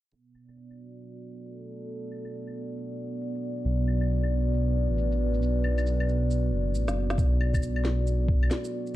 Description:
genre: future garage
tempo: 136 BPM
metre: 4/4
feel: swing 63% on 16ths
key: B minor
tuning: A4 = 439 Hz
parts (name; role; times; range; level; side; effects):
- dark analog pad; sustained chords; 0.1-9.0 s; B3 to D5; -32 LUFS; right 1 dB; chorus, sidechain pumping
- electronic shaker, claves and snare drum; drums; 0.1-8.9 s; none; -35 LUFS; left 1 dB; vintage 12-bit sampler grit, studio reverb
- dark detuned saw bass; bass; 3.7-8.5 s; F#1 to B1; -26 LUFS; equal; sidechain pumping
- electronic kick drum; drums; 7.2-8.4 s; none; -25 LUFS; equal; vintage 12-bit sampler grit, studio reverb
room: digital ambience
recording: dark, warm production, low-pass filter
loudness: -24 LUFS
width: side -15 dB against mid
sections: 0.1-7.2 A section; 7.2-9.0 B section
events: filter sweep 0.1-7.2; drum fill 6.9-7.2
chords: 0.1 Bm7

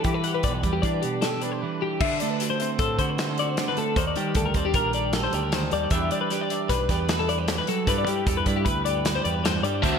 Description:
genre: math rock and midwest emo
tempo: 154 BPM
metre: 5/4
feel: straight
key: G major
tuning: A4 = 441 Hz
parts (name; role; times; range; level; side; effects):
- twelve-string electric guitar; accompaniment; 0.0-10.0 s; G2 to C5; -28 LUFS; right 8 dB; wide subtle chorus
- twelve-string electric guitar; arpeggios; 0.0-10.0 s; G4 to F#5; -26 LUFS; left 6 dB; wide subtle chorus, ping-pong delay
- growling fingered electric bass; bass; 0.0-10.0 s; Bb1 to G3; -29 LUFS; equal; overdrive
- loose indie drum kit; drums; 0.0-9.9 s; crash cymbal, hi-hat, kick drum, snare drum; -28 LUFS; equal; gated reverb
- overdriven electric guitar; riff; 9.8-10.0 s; D3 to F#4; -23 LUFS; equal; none
room: moderate lush hall reverb, RT60 1.6 s, studio reverb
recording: bright 1980s-style digital production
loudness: -22 LUFS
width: side -6 dB against mid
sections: 0.0-2.0 A section; 2.0-10.0 B section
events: none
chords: 0.0 G/B; 2.0 D7; 4.0 Ebmaj7; 5.9 Em7; 7.9 G6

